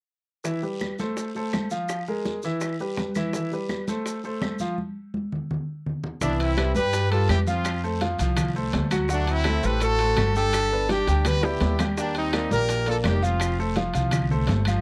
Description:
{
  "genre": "latin, salsa",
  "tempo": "167 BPM",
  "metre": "4/4",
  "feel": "straight",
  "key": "C major",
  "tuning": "A4 = 441 Hz",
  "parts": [
    { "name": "clear baby grand piano", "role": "accompaniment", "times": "0.4-14.8 s", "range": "E3 to G5", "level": "-30 LUFS", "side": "equal", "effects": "none" },
    { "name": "bongos", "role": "percussion", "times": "0.4-14.7 s", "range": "none", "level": "-36 LUFS", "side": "equal", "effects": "none" },
    { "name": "congas", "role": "percussion", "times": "0.4-14.8 s", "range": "none", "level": "-33 LUFS", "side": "equal", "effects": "none" },
    { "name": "guiro", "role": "percussion", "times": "0.4-14.8 s", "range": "none", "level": "-47 LUFS", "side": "equal", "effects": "none" },
    { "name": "maracas", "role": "percussion", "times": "0.4-14.8 s", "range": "none", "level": "-44 LUFS", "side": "equal", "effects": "none" },
    { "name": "claves", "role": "percussion", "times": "0.8-14.8 s", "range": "none", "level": "-42 LUFS", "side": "equal", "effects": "none" },
    { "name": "brilliant horn section", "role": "melody", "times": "6.2-13.6 s", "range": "A3 to B4", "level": "-28 LUFS", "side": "equal", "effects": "none" },
    { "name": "upright bass", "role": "bass", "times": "6.2-14.8 s", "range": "F1 to G2", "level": "-27 LUFS", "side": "equal", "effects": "none" },
    { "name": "timbales", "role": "percussion", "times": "6.4-14.8 s", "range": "none", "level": "-37 LUFS", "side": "equal", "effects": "none" }
  ],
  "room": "light reverb",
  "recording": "dry, close 1970s-style studio recording",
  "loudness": "-25 LUFS",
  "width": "mono",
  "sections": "0.5-6.2 A section; 6.2-14.8 B section",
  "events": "drum fill 4.8-6.2, 11.1-12.0; stop 4.8-6.2",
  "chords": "0.5 Cmaj7; 1.2 F; 1.9 Bb5; 2.6 Cmaj7 (rootless); 4.1 F; 4.8 N.C.; 6.2 Cmaj7; 7.7 F; 9.1 D7; 10.5 G; 12.0 Ebmaj7; 13.4 F"
}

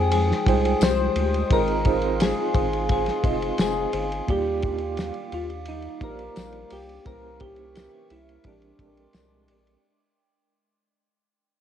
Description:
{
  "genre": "indie pop, bedroom pop",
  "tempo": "86 BPM",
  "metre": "4/4",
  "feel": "straight",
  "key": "Eb major",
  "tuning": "A4 = 441 Hz",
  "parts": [
    { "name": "soft electric-piano-like synth keys", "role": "melody", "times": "0.0-9.5 s", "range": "D4 to C5", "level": "-27 LUFS", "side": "left 2 dB", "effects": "lush chorus, cassette tape, plate reverb, tape echo" },
    { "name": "mellow reed electric piano", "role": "accompaniment", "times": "0.0-9.9 s", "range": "G3 to G5", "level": "-29 LUFS", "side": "right 12 dB", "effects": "fast tremolo, cassette tape" },
    { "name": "nylon-string guitar", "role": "accompaniment", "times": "0.0-9.9 s", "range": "Bb2 to C5", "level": "-33 LUFS", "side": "left 14 dB", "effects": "ensemble chorus, warbly pitch drift" },
    { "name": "warbly tape-like pad", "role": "sustained chords", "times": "0.0-9.8 s", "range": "Ab3 to Eb6", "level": "-34 LUFS", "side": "equal", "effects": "chorus, built-in reverb, plate reverb" },
    { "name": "round analog bass", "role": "bass", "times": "0.0-9.8 s", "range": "F1 to F2", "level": "-29 LUFS", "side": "left 1 dB", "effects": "none" },
    { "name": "cloth-damped thuddy drum kit", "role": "drums", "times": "0.1-9.8 s", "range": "hi-hat, kick drum, ride cymbal, snare drum", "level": "-26 LUFS", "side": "equal", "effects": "cassette tape" },
    { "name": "tambourine", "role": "percussion", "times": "0.8-9.3 s", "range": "none", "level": "-41 LUFS", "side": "left 13 dB", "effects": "none" }
  ],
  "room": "light reverb",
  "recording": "home recording on cassette",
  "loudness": "-21 LUFS",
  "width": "side -9 dB against mid",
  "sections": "0.0-9.8 A section",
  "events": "fade-out 0.0-9.8",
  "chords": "0.0 Fm9; 1.5 Ab6; 4.3 Ebmaj9; 7.1 C7b9; 8.4 Bb13"
}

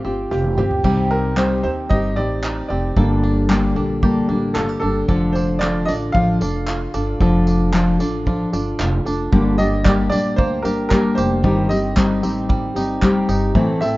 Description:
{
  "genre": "acoustic pop",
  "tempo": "113 BPM",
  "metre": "4/4",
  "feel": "straight",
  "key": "G minor",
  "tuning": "A4 = 440 Hz",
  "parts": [
    { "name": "fingerpicked steel-string acoustic guitar", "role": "accompaniment", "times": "0.0-14.0 s", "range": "G2 to A4", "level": "-18 LUFS", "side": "left 1 dB", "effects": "none" },
    { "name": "bluegrass banjo", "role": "arpeggios", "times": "0.0-14.0 s", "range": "D3 to A4", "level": "-29 LUFS", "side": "right 4 dB", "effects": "none" },
    { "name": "upright bass", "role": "bass", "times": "0.1-14.0 s", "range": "F1 to Eb2", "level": "-23 LUFS", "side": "equal", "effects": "none" },
    { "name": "bright upright piano", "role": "melody", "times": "0.3-14.0 s", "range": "G4 to F5", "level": "-24 LUFS", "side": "right 1 dB", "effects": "none" },
    { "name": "unplugged drum kit", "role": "drums", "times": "0.3-13.9 s", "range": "crash cymbal, handclaps, kick drum, snare drum, tambourine, toms", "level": "-22 LUFS", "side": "equal", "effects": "none" }
  ],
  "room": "light reverb, small room ambience",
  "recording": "rough home demo mix, nothing above 7.5 kHz",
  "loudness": "-16 LUFS",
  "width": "side -19 dB against mid",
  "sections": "0.0-9.3 A section; 9.3-14.0 B section",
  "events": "drum fill 0.3-0.8",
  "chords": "0.0 Fadd9; 0.8 Cm; 3.0 Gmadd9; 5.1 Dm/F; 9.3 Gm; 11.4 Cm/G"
}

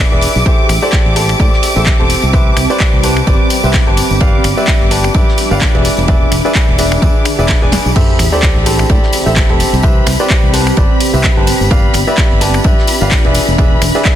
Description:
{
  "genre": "piano house",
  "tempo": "128 BPM",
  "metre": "4/4",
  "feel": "swing 56% on 16ths",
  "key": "A minor",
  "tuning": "A4 = 435 Hz",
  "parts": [
    { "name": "rich studio violin section", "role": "sustained chords", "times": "0.0-14.2 s", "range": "B5 to D6", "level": "-21 LUFS", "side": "left 1 dB", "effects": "sidechain pumping" },
    { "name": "clear grand piano", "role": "riff", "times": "0.0-14.2 s", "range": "G4 to A5", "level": "-17 LUFS", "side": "equal", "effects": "sidechain pumping, dub echo" },
    { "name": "fingered electric bass", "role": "bass", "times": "0.0-13.9 s", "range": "E1 to A2", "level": "-16 LUFS", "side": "equal", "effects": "sidechain pumping" },
    { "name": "granular cloud pad", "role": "texture", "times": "0.1-14.2 s", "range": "C4 to B5", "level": "-20 LUFS", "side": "equal", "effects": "built-in reverb, sidechain pumping" },
    { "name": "damped 70s drum kit", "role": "drums", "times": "0.2-14.2 s", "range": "ride cymbal, snare drum", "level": "-27 LUFS", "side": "right 5 dB", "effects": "none" },
    { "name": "punchy analog drum machine", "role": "drums", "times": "0.2-14.2 s", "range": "crash cymbal, finger snaps, handclaps, hi-hat, snare drum", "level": "-19 LUFS", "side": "left 1 dB", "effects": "none" },
    { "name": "tambourine", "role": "percussion", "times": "0.2-14.2 s", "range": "none", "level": "-26 LUFS", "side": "left 2 dB", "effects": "none" },
    { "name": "electronic kick drum", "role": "drums", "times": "0.5-14.2 s", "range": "none", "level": "-12 LUFS", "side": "equal", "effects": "none" },
    { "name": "sub drop", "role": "sound effects", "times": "8.0-9.8 s", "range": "none", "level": "-19 LUFS", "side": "equal", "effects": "none" }
  ],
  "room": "light reverb, studio reverb",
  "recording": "dense, heavily limited modern master",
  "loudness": "-9 LUFS",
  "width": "side -11 dB against mid",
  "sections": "0.0-8.0 A section; 8.0-14.2 B section",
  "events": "drum fill 7.7; drop 8.0-14.2; impact 8.0-9.8",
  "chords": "0.5 Am7; 2.3 Cmaj7; 4.2 G7; 5.8 E7; 8.0 Am7; 9.8 Cmaj7; 11.7 G7; 13.3 E7"
}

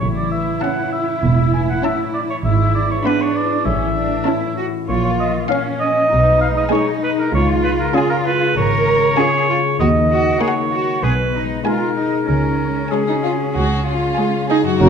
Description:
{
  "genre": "cinematic, playful, whimsical film cue",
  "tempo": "98 BPM",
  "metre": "4/4",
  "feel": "straight",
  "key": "unclear",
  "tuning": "A4 = 443 Hz",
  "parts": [
    { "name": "warm oboe", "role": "second line", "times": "0.0-14.9 s", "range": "G#4 to G#5", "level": "-20 LUFS", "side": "right 1 dB", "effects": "none" },
    { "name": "concert harp", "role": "arpeggios", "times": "0.0-14.9 s", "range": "F#2 to C#5", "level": "-23 LUFS", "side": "left 10 dB", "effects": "none" },
    { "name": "rich chamber double bass section", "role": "bass", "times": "0.0-14.9 s", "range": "E1 to D#2", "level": "-19 LUFS", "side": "right 3 dB", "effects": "none" },
    { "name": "warm studio cello section", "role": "bass", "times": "0.0-14.9 s", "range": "F#2 to A#4", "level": "-22 LUFS", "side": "right 2 dB", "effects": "none" },
    { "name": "rich chamber violin section", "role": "melody", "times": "0.6-14.9 s", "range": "A#4 to B5", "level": "-28 LUFS", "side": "left 3 dB", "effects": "none" },
    { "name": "rich chamber violin section", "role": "second line", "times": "0.6-14.8 s", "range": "C#4 to G#4", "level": "-24 LUFS", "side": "left 1 dB", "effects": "none" },
    { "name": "warm chamber viola section", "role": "accompaniment", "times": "0.6-14.9 s", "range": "G#3 to F#4", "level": "-22 LUFS", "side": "right 2 dB", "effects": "none" },
    { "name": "concert flute", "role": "second line", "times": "14.8-14.9 s", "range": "A#5", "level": "-23 LUFS", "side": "left 3 dB", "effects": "none" },
    { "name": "warm clarinet", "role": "second line", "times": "14.8-14.9 s", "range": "C#5", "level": "-22 LUFS", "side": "left 1 dB", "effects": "none" },
    { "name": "mellow French horn section", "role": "sustained chords", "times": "14.8-14.9 s", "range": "A#3 to C#4", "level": "-17 LUFS", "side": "left 7 dB", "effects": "none" },
    { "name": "warm tuba", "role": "bass", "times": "14.8-14.9 s", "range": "F#1", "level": "-13 LUFS", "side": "right 4 dB", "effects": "none" }
  ],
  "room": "wet recital hall reverb, RT60 1.5 s",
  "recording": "dark, warm production",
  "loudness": "-15 LUFS",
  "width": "side -7 dB against mid",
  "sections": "0.0-14.8 A section",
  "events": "none",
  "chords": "0.0 A; 2.5 E/G#; 3.7 A; 4.9 A#m; 6.1 G#m/B; 7.3 C#; 9.8 D#m; 11.0 G#m/B; 12.3 C#sus4; 13.6 C#"
}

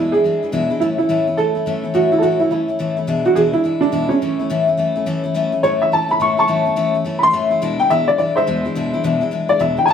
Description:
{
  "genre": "rock",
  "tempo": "212 BPM",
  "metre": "4/4",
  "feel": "swing 62% on 8ths",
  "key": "A major",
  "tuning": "A4 = 437 Hz",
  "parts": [
    { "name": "dark upright piano", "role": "melody", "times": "0.0-9.9 s", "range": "C#4 to C#6", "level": "-16 LUFS", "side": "right 1 dB", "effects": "none" },
    { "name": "picked steel-string acoustic guitar", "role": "accompaniment", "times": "0.0-9.9 s", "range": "E2 to E4", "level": "-19 LUFS", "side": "left 4 dB", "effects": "none" }
  ],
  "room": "moderate stone room reverb, RT60 1.0 s",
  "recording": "band playing live in one room",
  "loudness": "-15 LUFS",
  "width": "side -8 dB against mid",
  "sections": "0.0-5.4 A section; 5.4-9.9 B section",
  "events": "upright piano solo 5.4-9.9",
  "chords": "0.0 E7; 0.8 A; 3.1 E7; 4.2 A; 7.6 E7"
}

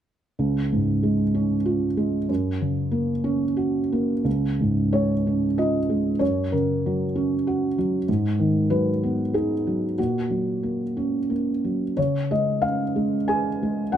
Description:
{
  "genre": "neoclassical minimalist piano",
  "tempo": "86-98 BPM",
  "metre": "3/4",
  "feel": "rubato",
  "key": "unclear",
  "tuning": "A4 = 444 Hz",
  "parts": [
    { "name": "felt-muted upright piano", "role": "solo", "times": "0.4-14.0 s", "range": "C#2 to G#5", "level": "-21 LUFS", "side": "right 1 dB", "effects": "none" }
  ],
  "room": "light reverb",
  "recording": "close, detailed microphones",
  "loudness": "-21 LUFS",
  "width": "side -10 dB against mid",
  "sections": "0.4-4.3 A section; 4.3-14.0 B section",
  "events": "none",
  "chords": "0.4 C#; 2.3 F#; 4.3 C#; 6.2 F#; 8.1 G#m7; 10.0 F#/A#; 12.0 C#"
}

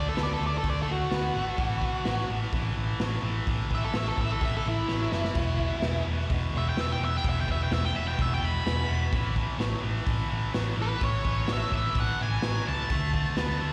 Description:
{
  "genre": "blues rock power trio and southern rock",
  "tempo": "127 BPM",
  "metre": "4/4",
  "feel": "straight",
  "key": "unclear",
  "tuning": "A4 = 440 Hz",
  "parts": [
    { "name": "octave-fuzz lead guitar", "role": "melody", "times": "0.0-13.7 s", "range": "E4 to B5", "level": "-34 LUFS", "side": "equal", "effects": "distortion, slapback echo, tape echo" },
    { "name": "tight distorted guitar", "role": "riff", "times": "0.0-13.7 s", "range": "E2 to B3", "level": "-36 LUFS", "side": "equal", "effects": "distortion, slapback echo" },
    { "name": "hollow-body short-scale picked electric bass", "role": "bass", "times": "0.0-13.7 s", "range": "E1 to D2", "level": "-32 LUFS", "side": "equal", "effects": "none" },
    { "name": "raw garage drum kit", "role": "drums", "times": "0.2-13.6 s", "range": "hi-hat, kick drum, snare drum, splash cymbal", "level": "-34 LUFS", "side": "equal", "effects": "none" }
  ],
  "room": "little or no reverb",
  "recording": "live gig heard through the venue's PA, recital hall reverb",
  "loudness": "-28 LUFS",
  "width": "mono",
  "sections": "0.0-13.7 A section",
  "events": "lead electric guitar solo 0.0-13.7; drum fill 4.9-5.4",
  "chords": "0.0 D; 1.6 A5; 5.4 E5; 9.1 A5; 12.9 D5"
}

